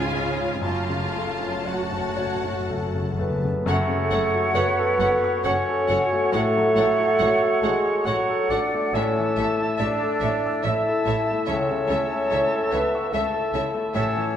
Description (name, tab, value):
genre	classical, romantic movement for piano and orchestra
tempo	57-74 BPM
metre	3/4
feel	rubato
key	F# minor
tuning	A4 = 440 Hz
part	clear grand piano	melody	0.0-14.4 s	C#2 to E6	-27 LUFS	left 3 dB	none
part	clear symphonic violin section	melody	0.0-14.0 s	E5 to A5	-36 LUFS	left 3 dB	none
part	rich symphonic violin section	second line	0.0-14.0 s	C#5 to F#5	-38 LUFS	left 3 dB	none
part	clear symphonic viola section	accompaniment	0.0-14.0 s	E#4 to A4	-33 LUFS	right 1 dB	none
part	dark French horn section	sustained chords	0.0-14.4 s	G#3 to C#5	-30 LUFS	left 3 dB	none
part	clear studio cello section	bass	0.0-14.0 s	F#2 to C#3	-33 LUFS	right 3 dB	none
part	clear symphonic double bass section	bass	0.0-14.0 s	F#1 to C#2	-34 LUFS	right 4 dB	none
part	timpani	percussion	0.6-3.6 s	F#2	-32 LUFS	equal	none
part	warm clarinet	second line	3.2-14.4 s	F#4 to E5	-30 LUFS	equal	none
part	mellow bassoon	accompaniment	3.2-14.4 s	F#3 to E4	-25 LUFS	right 1 dB	none
part	bright concert flute	second line	3.7-14.3 s	F#5 to A5	-30 LUFS	left 1 dB	none
part	clear oboe	second line	3.7-14.3 s	C#5 to E5	-30 LUFS	right 3 dB	none
room	wet recital hall reverb, RT60 1.5 s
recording	minimal, uncompressed stereo recording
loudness	-20 LUFS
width	side -9 dB against mid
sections	0.0-3.7 A section; 3.7-14.4 B section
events	timpani fill 0.6-3.7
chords	0.0 C#; 0.6 F#m; 6.3 F#m/A; 8.9 A; 11.5 A/C#